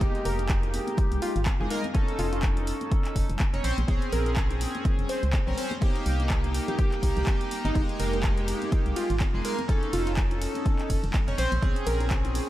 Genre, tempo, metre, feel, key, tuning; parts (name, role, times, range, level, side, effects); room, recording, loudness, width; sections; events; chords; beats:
deep house; 124 BPM; 4/4; swing 57% on 16ths; F minor; A4 = 440 Hz
chorused polysynth; stabs; 0.0-12.5 s; Ab3 to C#5; -30 LUFS; equal; sidechain pumping, analog delay
organ-like FM bass; bass; 0.0-12.4 s; F1 to Db2; -28 LUFS; equal; sidechain pumping
electronic kick drum; drums; 0.0-12.2 s; -26 LUFS; equal
punchy analog drum machine; drums; 0.0-12.5 s; handclaps, hi-hat, ride cymbal; -37 LUFS; equal
plucky unison lead; melody; 0.3-12.1 s; Eb4 to C5; -35 LUFS; right 1 dB; analog delay
bongos and congas; percussion; 0.4-12.5 s; -39 LUFS; left 1 dB; sidechain pumping on perc
light reverb, digital ambience; -24 LUFS; side -14 dB against mid
0.0-12.5 A section
0.0 Fm11; 1.9 Faug7; 3.6 Bbm9; 5.8 Cm7; 7.8 Fm11; 9.7 Faug7; 11.4 Bbm9
| 0.01 0.50 0.98 1.46 | 1.95 2.43 2.92 3.40 | 3.88 4.37 4.85 5.33 | 5.82 6.30 6.79 7.27 | 7.75 8.24 8.72 9.21 | 9.69 10.17 10.66 11.14 | 11.62 12.11